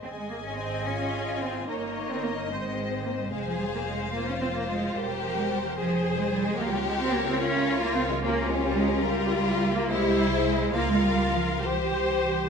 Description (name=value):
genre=quick classical-period movement for string orchestra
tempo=73 BPM (dotted quarters)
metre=6/8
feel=rubato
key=Ab major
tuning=A4 = 439 Hz
part: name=rich symphonic violin section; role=melody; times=0.0-12.5 s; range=Bb4 to Ab5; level=-34 LUFS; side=left 6 dB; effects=none
part: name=rich studio viola section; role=accompaniment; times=0.0-12.5 s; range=E4 to Eb5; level=-31 LUFS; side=equal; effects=none
part: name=warm symphonic cello section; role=bass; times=0.0-12.5 s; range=E3 to Db4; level=-29 LUFS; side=right 2 dB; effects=none
part: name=warm symphonic double bass section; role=bass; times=0.0-12.5 s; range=E1 to Db2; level=-34 LUFS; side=right 3 dB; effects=none
part: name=warm symphonic violin section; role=second line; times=0.9-12.4 s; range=C4 to Ab4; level=-31 LUFS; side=left 4 dB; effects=none
room=moderate concert hall reverb, RT60 1.9 s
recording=minimal, uncompressed stereo recording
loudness=-24 LUFS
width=side -6 dB against mid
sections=0.0-12.5 A section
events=none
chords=0.0 Ab; 1.7 Eb7/G; 2.5 Ab; 3.3 Fm; 5.0 C7/E; 5.8 Fm; 6.6 Bbm/Db; 8.2 Gm7b5/Db; 9.9 C; 10.7 Bbm/Db; 11.6 C